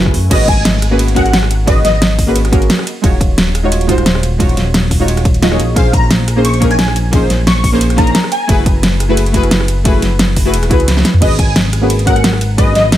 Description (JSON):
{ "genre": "liquid drum and bass", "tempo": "176 BPM", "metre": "4/4", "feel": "swing 53% on 16ths", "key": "unclear", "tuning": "A4 = 441 Hz", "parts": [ { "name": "deep mellow chord stab", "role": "accompaniment", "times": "0.0-13.0 s", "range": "A#2 to D#5", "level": "-17 LUFS", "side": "equal", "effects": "chorus, digital delay" }, { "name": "smooth gliding synth bass", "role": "bass", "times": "0.0-13.0 s", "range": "D#1 to F#2", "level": "-15 LUFS", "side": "equal", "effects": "none" }, { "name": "electronic kick drum", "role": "drums", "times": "0.1-12.7 s", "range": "none", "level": "-13 LUFS", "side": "equal", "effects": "overdrive" }, { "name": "pop drum kit", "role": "drums", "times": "0.1-13.0 s", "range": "crash cymbal, hi-hat, ride cymbal, rim click, snare drum, toms", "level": "-16 LUFS", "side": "equal", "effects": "overdrive" }, { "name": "plucky unison lead", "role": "melody", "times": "0.3-2.0, 5.8-8.5, 11.2-12.9 s", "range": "D#5 to C#6", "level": "-18 LUFS", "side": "left 1 dB", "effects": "ensemble chorus, tape echo" } ], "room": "little or no reverb", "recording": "none", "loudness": "-10 LUFS", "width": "side -12 dB against mid", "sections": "0.3-13.0 A section", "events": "drop 0.3-13.0; drum fill 10.9-11.2", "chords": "0.3 G#m11; 2.9 D#m11; 5.6 A#m11; 8.5 F#m11; 11.2 G#m11", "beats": "| 0.31 0.65 0.99 1.33 | 1.67 2.01 2.35 2.70 | 3.04 3.38 3.72 4.06 | 4.40 4.74 5.08 5.42 | 5.76 6.11 6.45 6.79 | 7.13 7.47 7.81 8.15 | 8.49 8.83 9.17 9.51 | 9.86 10.20 10.54 10.88 | 11.22 11.56 11.90 12.24 | 12.58 12.92" }